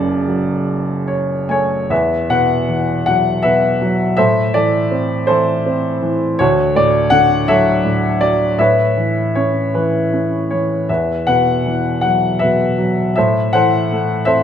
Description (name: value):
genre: classical, lyrical solo piano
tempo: 53 BPM (dotted quarters)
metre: 6/8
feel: uneven beats, rubato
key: unclear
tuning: A4 = 440 Hz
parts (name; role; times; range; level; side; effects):
- warm baby grand piano; solo; 0.0-14.4 s; F#1 to G#5; -13 LUFS; equal; none
room: moderate recital hall reverb, RT60 1.3 s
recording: minimal, uncompressed stereo recording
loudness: -13 LUFS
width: side -9 dB against mid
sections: 0.0-1.9 A section; 1.9-14.4 B section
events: grand piano fill 0.7-1.9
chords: 0.0 Dmaj7/F#; 1.9 Esus2; 4.2 Am; 6.4 Dmaj7; 8.6 Aadd9; 10.9 Esus2; 13.2 Am